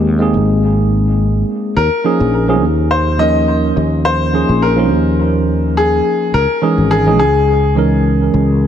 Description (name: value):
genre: sunset chillout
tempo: 105 BPM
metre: 4/4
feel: swing 54% on 16ths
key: unclear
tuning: A4 = 440 Hz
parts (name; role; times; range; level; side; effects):
- tine electric piano; accompaniment; 0.0-8.7 s; Fb3 to Bb4; -15 LUFS; right 1 dB; auto-pan, vintage 12-bit sampler grit, dub echo
- sustaining fretless electric bass; bass; 0.0-8.7 s; Ab1 to Eb2; -15 LUFS; equal; tube saturation
- clear grand piano; melody; 1.8-8.7 s; Ab4 to Eb5; -16 LUFS; left 3 dB; analog delay
room: moderate plate reverb, RT60 3.4 s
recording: echo-heavy mix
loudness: -11 LUFS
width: side -9 dB against mid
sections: 0.0-8.7 A section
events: none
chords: 0.0 Abadd9; 1.8 Eb9sus4; 6.3 Dbmadd9